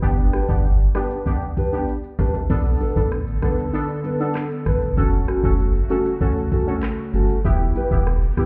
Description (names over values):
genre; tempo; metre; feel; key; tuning
dancehall; 97 BPM; 4/4; straight; B minor; A4 = 440 Hz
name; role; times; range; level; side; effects
synth brass stab; accompaniment; 0.0-8.5 s; B3 to A4; -28 LUFS; equal; chorus, sidechain pumping
round analog bass; bass; 0.0-8.3 s; E1 to B1; -23 LUFS; equal; none
island pop drum kit; drums; 0.0-8.5 s; crash cymbal, handclaps, hi-hat, kick drum, rim click, shaker; -24 LUFS; equal; none
egg shaker and timbales; percussion; 0.0-8.4 s; none; -38 LUFS; equal; none
nylon-string guitar; arpeggios; 0.3-8.5 s; C#4 to B4; -29 LUFS; equal; none
airy breathy pad; sustained chords; 2.8-8.5 s; C#3 to A4; -31 LUFS; equal; chorus, sidechain pumping
room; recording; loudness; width
little or no reverb; heard muffled through a wall, club reverb, EQ; -21 LUFS; mono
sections
0.0-2.5 A section; 2.5-8.5 B section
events
none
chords
0.0 G; 2.5 Bm7; 5.0 F#m; 7.4 Em